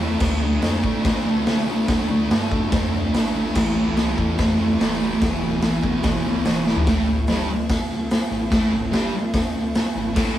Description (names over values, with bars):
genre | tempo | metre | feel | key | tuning
garage rock duo or trio | 145 BPM | 4/4 | straight | unclear | A4 = 440 Hz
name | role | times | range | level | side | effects
thick fuzz guitar | riff | 0.0-10.4 s | E2 to D4 | -22 LUFS | right 1 dB | distortion
soft dub sub bass | bass | 0.0-10.4 s | D1 to C3 | -30 LUFS | left 1 dB | none
raw garage drum kit | drums | 0.2-10.3 s | crash cymbal, hi-hat, kick drum, snare drum, toms | -20 LUFS | equal | none
room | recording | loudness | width
moderate small room reverb, RT60 0.5 s | rough rehearsal-room recording | -18 LUFS | side -12 dB against mid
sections
0.0-6.9 A section; 6.9-10.4 B section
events
drum fill 6.7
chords
0.2 Dm; 3.5 A5; 5.2 Em; 6.9 Gsus2